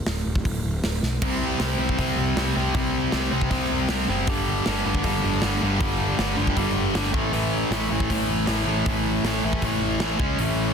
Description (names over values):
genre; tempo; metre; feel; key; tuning
punk rock; 157 BPM; 4/4; straight; unclear; A4 = 437 Hz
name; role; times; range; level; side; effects
fuzz picked electric bass; bass; 0.1-10.7 s; D1 to C#2; -28 LUFS; equal; overdrive
big rock drum kit; drums; 0.1-10.5 s; crash cymbal, hi-hat, kick drum, snare drum; -27 LUFS; right 1 dB; none
distorted electric guitar; riff; 1.2-10.7 s; G2 to C#4; -23 LUFS; left 1 dB; overdrive
room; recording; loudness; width
little or no reverb; dense, heavily limited modern master; -21 LUFS; side -6 dB against mid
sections
0.0-10.7 A section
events
drum fill 1.0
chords
0.0 Bm/D; 1.2 C5; 4.3 G5; 7.1 A5; 10.2 C#5